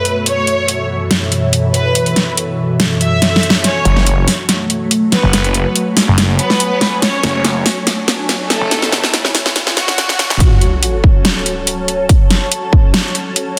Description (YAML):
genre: heavy wobble dubstep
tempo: 142 BPM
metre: 4/4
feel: half-time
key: F# minor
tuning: A4 = 440 Hz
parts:
  - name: rich studio violin section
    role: melody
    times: 0.0-10.3 s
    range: A3 to E5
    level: -22 LUFS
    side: equal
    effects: dub echo
  - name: evolving wavetable pad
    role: sustained chords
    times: 0.0-13.6 s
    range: F#2 to A4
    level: -23 LUFS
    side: equal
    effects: ensemble chorus, built-in reverb, phaser, sidechain pumping
  - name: ethereal airy pad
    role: texture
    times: 0.0-13.6 s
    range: F#4 to A5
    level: -27 LUFS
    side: equal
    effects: ensemble chorus, built-in reverb, phaser, sidechain pumping
  - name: dubstep drum kit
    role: drums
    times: 0.1-13.4 s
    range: hi-hat, snare drum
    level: -17 LUFS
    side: equal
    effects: none
  - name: riser and sub drop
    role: sound effects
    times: 5.8-12.1 s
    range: none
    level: -26 LUFS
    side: equal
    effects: none
  - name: snarling distorted saw bass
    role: bass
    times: 3.9-10.4 s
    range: F#1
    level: -17 LUFS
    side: equal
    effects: distortion, overdrive
  - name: electronic kick drum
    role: drums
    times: 10.4-12.8 s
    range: none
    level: -12 LUFS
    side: equal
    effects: none
room: moderate lush hall reverb, RT60 1.8 s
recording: dense, heavily limited modern master, high-pass filter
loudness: -14 LUFS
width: mono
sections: 0.0-3.6 A section; 3.6-10.4 B section; 10.4-13.6 C section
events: filter sweep on drum 0.0-3.6; drum fill 3.2-3.6, 3.6-10.4; build-up 3.6-10.4; filter sweep 3.6-10.4; impact 10.4-12.1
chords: 0.0 F#m; 3.6 F#madd9; 10.4 F#m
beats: | 0.26 0.69 1.11 1.53 | 1.95 2.38 2.80 3.22 | 3.64 4.07 4.49 4.91 | 5.33 5.75 6.18 6.60 | 7.02 7.45 7.87 8.29 | 8.71 9.13 9.56 9.98 | 10.40 10.83 11.25 11.67 | 12.09 12.52 12.94 13.36